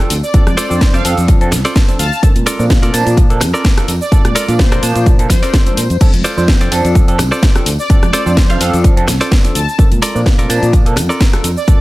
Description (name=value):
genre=filtered disco house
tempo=127 BPM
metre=4/4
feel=swing 54% on 16ths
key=F major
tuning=A4 = 440 Hz
part: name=barky tine electric piano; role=accompaniment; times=0.0-11.8 s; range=F3 to A5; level=-20 LUFS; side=right 1 dB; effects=medium stereo tremolo, phaser, sidechain pumping
part: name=direct-recorded clean electric guitar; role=riff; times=0.0-11.5 s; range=F4 to A5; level=-20 LUFS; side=right 1 dB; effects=sidechain pumping
part: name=house drum kit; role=drums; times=0.0-11.8 s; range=cabasa, crash cymbal, hi-hat, rim click, snare drum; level=-19 LUFS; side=equal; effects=sidechain pumping on perc, sidechain pumping on hats, sidechain pumping on cymbals
part: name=overdriven fingered electric bass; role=bass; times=0.1-11.7 s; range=C2 to Bb2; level=-16 LUFS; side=equal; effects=sidechain pumping
part: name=tambourine and congas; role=percussion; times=0.1-11.8 s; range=none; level=-26 LUFS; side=right 2 dB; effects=sidechain pumping on perc
part: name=analog synth brass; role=melody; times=0.2-11.8 s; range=C5 to A5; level=-22 LUFS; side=left 1 dB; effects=chorus, vintage 12-bit sampler grit, sidechain pumping
part: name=electronic kick drum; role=drums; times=0.3-11.8 s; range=none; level=-10 LUFS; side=equal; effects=none
room=digital ambience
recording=none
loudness=-10 LUFS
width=side -18 dB against mid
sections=0.0-11.8 A section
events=clean electric guitar fill 1.5-2.2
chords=0.0 F6; 2.2 Bbmaj7; 6.0 F6; 9.8 Bbmaj7